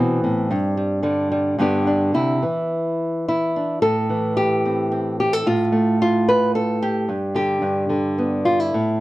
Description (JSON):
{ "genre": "folk, solo fingerstyle acoustic guitar", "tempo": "109 BPM", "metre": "3/4", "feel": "uneven beats, rubato", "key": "C major", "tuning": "A4 = 441 Hz", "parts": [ { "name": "nylon-string guitar", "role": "solo", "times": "0.0-9.0 s", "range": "G2 to B4", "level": "-18 LUFS", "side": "equal", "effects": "none" } ], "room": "light reverb", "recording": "dark, warm production", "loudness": "-18 LUFS", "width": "side -17 dB against mid", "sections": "0.0-2.1 A section; 2.1-9.0 B section", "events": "none", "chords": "0.0 Amadd9; 0.5 Gsus4; 1.6 G; 2.1 Cadd9; 3.8 Am; 5.5 N.C.; 7.1 G5; 7.6 G", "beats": "| 0.51 1.04 1.58 | 2.14 2.71 3.27 | 3.82 4.36 4.91 | 5.45 5.99 6.54 | 7.08 7.62 8.17 | 8.73" }